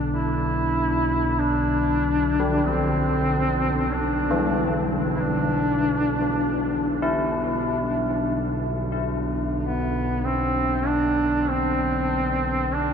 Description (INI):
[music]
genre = dark ambient drone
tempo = 48 BPM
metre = 4/4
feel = straight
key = B phrygian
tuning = A4 = 439 Hz
[part]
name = analog drone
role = drone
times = 0.0-12.9 s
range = B1 to D3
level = -25 LUFS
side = equal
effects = chorus
[part]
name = warm duduk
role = melody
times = 0.1-12.9 s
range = B3 to E4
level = -24 LUFS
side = equal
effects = ping-pong delay
[part]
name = old church bells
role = arpeggios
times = 2.4-12.9 s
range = D3 to E4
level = -28 LUFS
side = left 2 dB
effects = ping-pong delay
[sound]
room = wet huge ambient reverb, RT60 9.2 s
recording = none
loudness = -21 LUFS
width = side -7 dB against mid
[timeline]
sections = 0.0-12.9 A section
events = none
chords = 0.0 Bm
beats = | 0.10 1.39 2.67 3.94 | 5.21 6.48 7.74 9.00 | 10.26 11.51 12.77